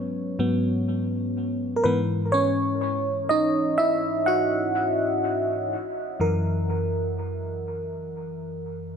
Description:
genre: R&B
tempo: 62 BPM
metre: 4/4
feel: straight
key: unclear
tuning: A4 = 438 Hz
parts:
  - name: FM electric piano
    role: solo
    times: 0.0-9.0 s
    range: F#2 to F#5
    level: -23 LUFS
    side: equal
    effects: chorus, dub echo
room: moderate echo chamber reverb, RT60 2.2 s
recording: echo-heavy mix, faint mains hum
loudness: -22 LUFS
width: side -7 dB against mid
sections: 0.0-9.0 A section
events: FM electric piano solo 0.0-9.0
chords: 0.0 G#m7; 1.8 C#madd9/G#; 5.7 F#7

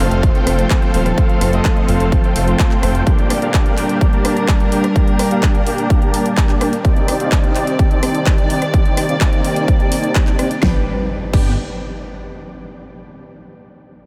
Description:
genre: EDM, festival progressive house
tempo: 127 BPM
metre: 4/4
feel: straight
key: G minor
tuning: A4 = 440 Hz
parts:
  - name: dark studio string section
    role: sustained chords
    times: 0.0-10.8 s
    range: Eb3 to D5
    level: -25 LUFS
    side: equal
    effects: sidechain pumping
  - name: dense compressed supersaw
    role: riff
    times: 0.0-11.5 s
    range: A3 to A5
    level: -22 LUFS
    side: equal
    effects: sidechain pumping, low-pass filter, diffuse ambient delay
  - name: detuned saw bass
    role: bass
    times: 0.0-3.0, 10.6-11.6 s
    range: Eb1 to G1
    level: -20 LUFS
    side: equal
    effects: sidechain pumping
  - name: big-room dance drum kit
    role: drums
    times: 0.0-11.4 s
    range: crash cymbal, handclaps, hi-hat, rim click, snare drum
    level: -27 LUFS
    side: equal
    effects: overdrive
  - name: electronic kick drum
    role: drums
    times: 0.2-11.4 s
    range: none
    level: -17 LUFS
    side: equal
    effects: none
  - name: impact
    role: sound effects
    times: 10.6-12.5 s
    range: none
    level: -32 LUFS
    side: equal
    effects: none
room: moderate huge ambient reverb, RT60 7.9 s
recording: dreamy mix soaked in reverb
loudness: -15 LUFS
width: mono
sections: 0.0-10.6 A section; 10.6-12.5 B section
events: filter sweep on supersaw synth 0.0-10.6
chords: 0.0 F; 3.1 Gm; 6.8 Cmadd9; 10.6 G

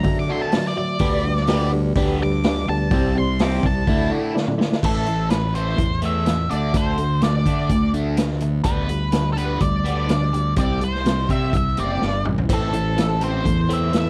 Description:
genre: classic rock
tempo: 125 BPM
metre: 4/4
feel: straight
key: A dorian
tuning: A4 = 439 Hz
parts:
  - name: octave-fuzz lead guitar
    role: melody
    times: 0.0-14.1 s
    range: A4 to D6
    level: -28 LUFS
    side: equal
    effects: wah, distortion, slapback echo
  - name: reed electric piano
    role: accompaniment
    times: 0.0-4.8, 12.5-14.1 s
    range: E4 to E5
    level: -30 LUFS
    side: equal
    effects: fast tremolo
  - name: crunchy overdriven guitar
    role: riff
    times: 0.0-14.1 s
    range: A2 to E4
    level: -27 LUFS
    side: equal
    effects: phaser
  - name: fuzz fingered electric bass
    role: bass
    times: 0.0-14.1 s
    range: F#1 to D3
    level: -25 LUFS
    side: equal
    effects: overdrive
  - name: raw garage drum kit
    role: drums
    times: 0.0-14.1 s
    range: crash cymbal, hi-hat, kick drum, snare drum, toms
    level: -26 LUFS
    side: equal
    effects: none
room: small room ambience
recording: dry, close 1970s-style studio recording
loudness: -21 LUFS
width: mono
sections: 0.0-4.8 A section; 4.8-14.1 B section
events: lead electric guitar solo 0.0-4.8; drum fill 4.4-4.8, 12.0-12.5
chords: 0.0 Dadd9; 1.0 G/D; 2.9 Csus2; 3.9 Dsus2; 4.8 Am; 6.5 D5; 8.7 G/D; 10.6 Csus2; 12.5 Am

